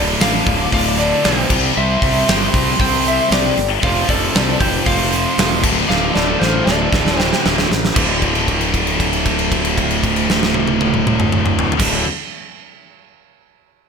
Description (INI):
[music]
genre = hard rock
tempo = 116 BPM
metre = 4/4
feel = straight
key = D minor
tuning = A4 = 440 Hz
[part]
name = distorted electric guitar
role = riff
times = 0.0-12.0 s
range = D2 to C4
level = -25 LUFS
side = equal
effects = none
[part]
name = scooped high-gain guitar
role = riff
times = 0.0-12.0 s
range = D2 to C4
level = -22 LUFS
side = left 13 dB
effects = distortion
[part]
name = tight distorted guitar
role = riff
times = 0.0-12.0 s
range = D2 to C4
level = -22 LUFS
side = right 11 dB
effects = distortion
[part]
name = fuzz fingered electric bass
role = bass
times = 0.0-12.0 s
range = D1 to C2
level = -22 LUFS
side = equal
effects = overdrive
[part]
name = lightly driven lead guitar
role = melody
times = 0.2-7.4 s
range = C5 to G5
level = -22 LUFS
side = left 2 dB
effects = lush chorus, digital delay
[part]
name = octave-fuzz lead guitar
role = second line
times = 0.2-7.4 s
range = F4 to D5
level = -25 LUFS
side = right 4 dB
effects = distortion
[part]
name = gated 80s drum kit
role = drums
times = 0.2-11.9 s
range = crash cymbal, hi-hat, kick drum, snare drum, toms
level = -18 LUFS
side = right 1 dB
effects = gated reverb
[sound]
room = moderate lush hall reverb, RT60 1.9 s, studio reverb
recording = bright 1980s-style digital production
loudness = -13 LUFS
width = side -6 dB against mid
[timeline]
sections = 0.0-8.0 A section; 8.0-12.1 B section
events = drum fill 5.9-8.0; held note 8.0-11.8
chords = 0.0 Dm; 1.5 C5; 3.8 F; 5.6 D5